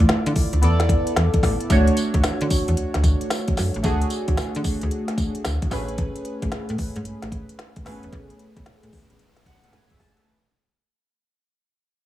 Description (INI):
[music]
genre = R&B, new jack swing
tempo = 112 BPM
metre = 4/4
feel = swing 64% on 16ths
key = A major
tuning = A4 = 440 Hz
[part]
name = warm analog keys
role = accompaniment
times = 0.0-10.4 s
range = A3 to A5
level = -25 LUFS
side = equal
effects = chorus, phaser
[part]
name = slap-like FM bass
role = bass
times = 0.0-10.1 s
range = E1 to D3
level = -22 LUFS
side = equal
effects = none
[part]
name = organic electronic drum kit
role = drums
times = 0.1-10.3 s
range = hi-hat, kick drum, snare drum, tambourine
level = -23 LUFS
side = equal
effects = none
[sound]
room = little or no reverb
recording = small room ambience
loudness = -19 LUFS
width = side -14 dB against mid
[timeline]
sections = 0.0-1.7 A section; 1.7-10.3 B section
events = fade-out 1.7-10.3; synth keys fill 9.2-10.3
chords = 0.0 Dmadd9; 0.6 E7sus4; 1.7 Dmaj7; 5.7 Amaj9